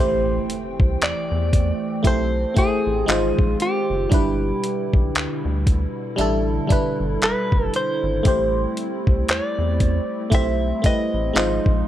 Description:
contemporary R&B; 58 BPM; 4/4; swing 58% on 16ths; A4 = 440 Hz
direct-recorded clean electric guitar; melody; 0.0-11.9 s; G4 to E5; -25 LUFS; left 1 dB; analog delay
FM electric piano; accompaniment; 0.0-11.9 s; G3 to G5; -24 LUFS; right 1 dB; chorus, phaser
hollow soft pad; sustained chords; 0.0-11.9 s; B2 to G5; -30 LUFS; equal; ensemble chorus
rubbery square bass; bass; 0.0-11.8 s; F#1 to E2; -24 LUFS; equal
impact; sound effects; 0.0-4.1 s; -41 LUFS; equal
dusty soul sampler-style drum kit; drums; 0.5-11.9 s; handclaps, hi-hat, kick drum; -20 LUFS; equal
light reverb; -18 LUFS; side -12 dB against mid
0.0-11.9 A section
impact 0.0-4.1
0.0 Am7; 3.1 G#6; 4.1 G6; 8.3 Am7; 11.4 G#6

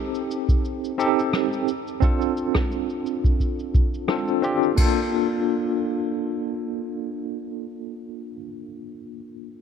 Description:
sunset chillout; 87 BPM; 4/4; swing 55% on 16ths; A4 = 443 Hz
barky tine electric piano; accompaniment; 0.0-9.6 s; Bb3 to A4; -24 LUFS; moving between left 5 dB and right 7 dB; medium stereo tremolo, auto-pan, digital delay
vintage brush drum kit; drums; 0.1-4.9 s; cabasa, crash cymbal, rim click; -31 LUFS; left 1 dB; low-pass filter on cymbals, low-pass filter on snare, low-pass filter on perc, low-pass filter on room
electronic kick drum; drums; 0.5-4.9 s; -20 LUFS; equal; overdrive
light reverb; -21 LUFS; side -7 dB against mid
0.0-4.8 A section; 4.8-7.5 B section
filter sweep on drum 0.0-4.8
0.0 Cm6; 1.7 F6/C; 4.8 Bbmaj7

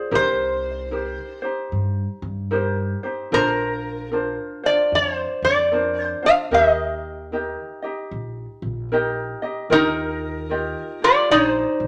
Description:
Hawaiian; 75 BPM; 4/4; swing 64% on 8ths; Eb major; A4 = 442 Hz
metal-body resonator slide guitar; melody; 0.0-11.9 s; Eb4 to F5; -21 LUFS; equal
ukulele; accompaniment; 0.0-11.9 s; D4 to Eb5; -27 LUFS; equal
upright bass; bass; 0.1-11.9 s; Bb1 to G2; -32 LUFS; equal
moderate large studio reverb, RT60 0.9 s; -22 LUFS; mono
0.0-9.7 A section; 9.7-11.9 A section
0.1 Cm7; 3.3 Bbadd9; 6.5 Eb; 9.7 Ebadd9

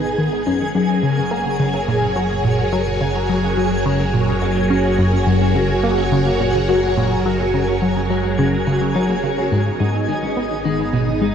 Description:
ambient, sequencer-driven space music; 106 BPM; 4/4; straight; A4 = 440 Hz
phased string machine; sustained chords; 0.0-11.3 s; F#3 to C#5; -20 LUFS; equal; ensemble chorus, phaser
analog drone; bass; 0.0-11.3 s; F#1 to G#1; -25 LUFS; equal; chorus
twinkling granular texture; texture; 0.0-11.3 s; D#4 to G#5; -26 LUFS; equal; built-in reverb
clean electric guitar; arpeggios; 0.2-11.3 s; F#3 to D#4; -33 LUFS; left 1 dB; auto-pan, analog delay
tight sequenced synth; riff; 0.2-11.3 s; F#2 to C#4; -19 LUFS; left 1 dB; chorus, phaser, analog delay
wet huge ambient reverb, RT60 8.2 s; -16 LUFS; side -8 dB against mid
0.0-11.3 A section
fade-in on clean electric guitar 0.0-11.3
0.5 F#add9; 9.5 G#m

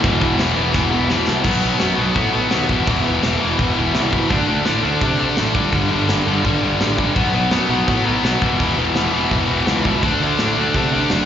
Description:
punk rock; 168 BPM; 4/4; straight; E minor; A4 = 440 Hz
distorted electric guitar; riff; 0.0-11.3 s; E2 to D4; -22 LUFS; right 9 dB; distortion, slapback echo
tight distorted guitar; riff; 0.0-11.3 s; E2 to D4; -18 LUFS; left 6 dB; distortion, slapback echo
fuzz picked electric bass; bass; 0.0-11.2 s; E1 to C3; -23 LUFS; equal; overdrive
tight metal drum kit; drums; 0.0-11.2 s; crash cymbal, hi-hat, kick drum, snare drum; -23 LUFS; equal
light reverb; live gig heard through the venue's PA, club reverb, nothing above 7.5 kHz; -15 LUFS; side -9 dB against mid
0.0-1.5 A section; 1.5-11.3 B section
drum fill 0.7-1.5
0.0 E5; 1.5 B5; 2.7 E5; 4.3 D5; 5.6 G5; 7.2 B5; 8.4 E5; 10.0 D5

